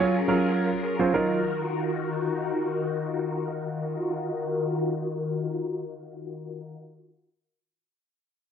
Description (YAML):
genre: pop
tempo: free time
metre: none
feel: none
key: Eb minor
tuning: A4 = 441 Hz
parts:
  - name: warm concert grand piano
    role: accompaniment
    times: 0.0-1.4 s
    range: Gb3 to Db5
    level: -23 LUFS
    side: right 4 dB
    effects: low-pass filter
  - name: string machine, violas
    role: sustained chords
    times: 0.0-6.8 s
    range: Eb3 to Bb4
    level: -28 LUFS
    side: left 3 dB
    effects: phaser, ensemble chorus, low-pass filter
room: light reverb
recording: dry, close 1970s-style studio recording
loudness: -25 LUFS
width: side -8 dB against mid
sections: 0.0-3.7 A section; 3.7-6.0 B section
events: filter sweep 0.0-3.7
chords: 0.0 Gbmaj7; 1.1 Ebmadd9